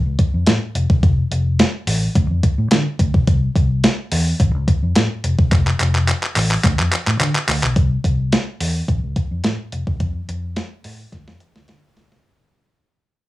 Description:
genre	early-eighties boogie funk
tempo	107 BPM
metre	4/4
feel	straight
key	F major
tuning	A4 = 438 Hz
part	vintage muted fingered electric bass	bass	0.1-12.2 s	E1 to D3	-19 LUFS	left 1 dB	none
part	crisp 8-bit digital drum machine	drums	0.2-12.2 s	handclaps, hi-hat, kick drum, snare drum	-17 LUFS	equal	none
room	light reverb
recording	home recording on cassette, studio ambience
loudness	-16 LUFS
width	side -17 dB against mid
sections	0.0-7.8 A section; 7.8-12.2 B section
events	drum fill 5.5-7.8, 11.1-12.2; fade-out 7.8-12.2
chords	none

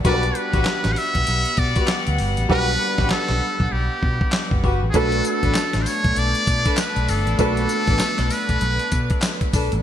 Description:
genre	R&B, new jack swing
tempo	98 BPM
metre	4/4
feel	swing 60% on 16ths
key	B minor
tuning	A4 = 436 Hz
part	warm grand piano	accompaniment	0.0-9.8 s	G3 to F#5	-27 LUFS	right 2 dB	wide subtle chorus
part	mellow horn section	stabs	0.0-9.7 s	D4 to B4	-28 LUFS	left 3 dB	none
part	vintage muted fingered electric bass	bass	0.0-9.8 s	F#1 to B2	-23 LUFS	equal	none
part	dusty soul sampler-style drum kit	drums	0.0-9.8 s	handclaps, hi-hat, kick drum, snare drum, tambourine	-23 LUFS	equal	none
part	trumpet with metal mute	melody	0.1-9.2 s	G4 to F#5	-24 LUFS	equal	ping-pong delay
part	clear studio string section	sustained chords	0.1-9.8 s	G3 to F#5	-29 LUFS	left 3 dB	none
room	moderate lush hall reverb, RT60 2.4 s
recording	bright 1980s-style digital production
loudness	-18 LUFS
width	side -10 dB against mid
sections	0.0-9.8 A section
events	hi-hats muted 2.5-4.9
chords	0.0 Gmaj7; 4.9 Bm7

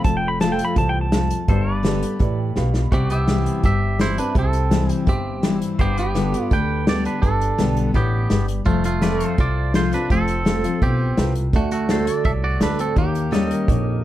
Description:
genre	honky-tonk and classic country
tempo	167 BPM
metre	4/4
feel	straight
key	G mixolydian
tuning	A4 = 440 Hz
part	pedal steel guitar	melody	0.0-2.1 s	G5 to B5	-25 LUFS	right 2 dB	none
part	dark grand piano	accompaniment	0.0-14.0 s	D4 to B5	-32 LUFS	right 3 dB	none
part	picked steel-string acoustic guitar	accompaniment	0.0-14.0 s	E2 to G4	-24 LUFS	left 3 dB	none
part	pedal steel guitar	sustained chords	0.0-14.0 s	G4 to E5	-32 LUFS	equal	none
part	upright bass	bass	0.0-14.0 s	F1 to Eb2	-23 LUFS	equal	none
part	unplugged drum kit	drums	0.0-13.8 s	hi-hat, kick drum, snare drum	-22 LUFS	equal	none
part	twangy electric guitar	second line	2.9-14.0 s	A3 to G5	-25 LUFS	right 3 dB	tape echo
room	little or no reverb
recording	dark, warm production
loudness	-17 LUFS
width	side -13 dB against mid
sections	0.0-2.9 A section; 2.9-14.0 B section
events	pedal steel guitar solo 0.0-2.9; grand piano fill 2.2-2.9; drum fill 2.6-2.9; clean electric guitar solo 2.9-14.0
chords	0.0 F; 1.5 G; 2.9 C; 5.8 G; 8.7 F; 11.5 D; 13.0 Eb7

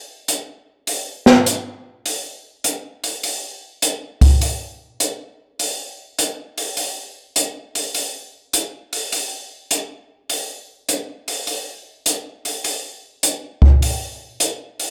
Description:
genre	jazz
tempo	102 BPM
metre	4/4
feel	swing 66% on 8ths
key	none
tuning	none
part	open jazz drum kit	drums	0.3-14.9 s	hi-hat, kick drum, snare drum	-19 LUFS	equal	none
room	light reverb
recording	none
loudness	-21 LUFS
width	mono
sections	0.0-14.9 A section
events	none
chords	none

